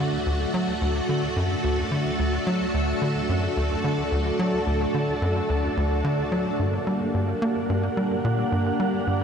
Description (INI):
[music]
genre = ambient, sequencer-driven space music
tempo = 109 BPM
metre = 4/4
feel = straight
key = G harmonic minor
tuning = A4 = 437 Hz
[part]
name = string machine, full ensemble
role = sustained chords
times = 0.0-9.2 s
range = A3 to D5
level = -25 LUFS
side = equal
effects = ensemble chorus
[part]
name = tight sequencer bass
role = riff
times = 0.0-9.2 s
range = D2 to Bb3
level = -25 LUFS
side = equal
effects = analog delay
[part]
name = wind-like tuned noise texture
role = texture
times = 7.2-9.2 s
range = F#5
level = -33 LUFS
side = right 7 dB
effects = built-in reverb
[sound]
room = wet huge ambient reverb, RT60 7.7 s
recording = none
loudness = -22 LUFS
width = side -7 dB against mid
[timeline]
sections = 0.0-6.6 A section; 6.6-9.2 B section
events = none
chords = 0.0 D; 6.6 Gm